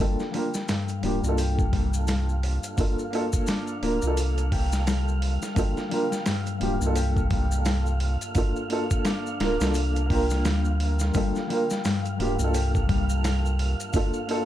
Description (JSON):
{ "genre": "trip hop", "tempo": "86 BPM", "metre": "4/4", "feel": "swing 59% on 16ths", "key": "G minor", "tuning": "A4 = 440 Hz", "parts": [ { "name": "dark upright piano", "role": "accompaniment", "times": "0.0-14.4 s", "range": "Bb3 to Bb4", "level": "-29 LUFS", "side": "right 1 dB", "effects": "tremolo, tape echo" }, { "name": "concert harp", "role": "arpeggios", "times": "0.0-14.4 s", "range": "G2 to G4", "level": "-32 LUFS", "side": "left 5 dB", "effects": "digital delay" }, { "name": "warm sub bass", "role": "bass", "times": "0.0-14.1 s", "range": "D1 to D2", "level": "-25 LUFS", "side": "equal", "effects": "none" }, { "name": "wind-like tuned noise texture", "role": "texture", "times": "0.7-14.4 s", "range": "F5", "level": "-37 LUFS", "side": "right 3 dB", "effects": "built-in reverb" }, { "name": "dusty soul sampler-style drum kit", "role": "drums", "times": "0.2-14.4 s", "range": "hi-hat, kick drum, snare drum", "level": "-28 LUFS", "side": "equal", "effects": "overdrive, small room ambience" }, { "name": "maracas", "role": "percussion", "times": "0.2-14.3 s", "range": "none", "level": "-40 LUFS", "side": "left 4 dB", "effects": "none" } ], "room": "studio reverb", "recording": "none", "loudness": "-23 LUFS", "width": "side -12 dB against mid", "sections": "0.0-14.4 A section", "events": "none", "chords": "0.0 Gm7" }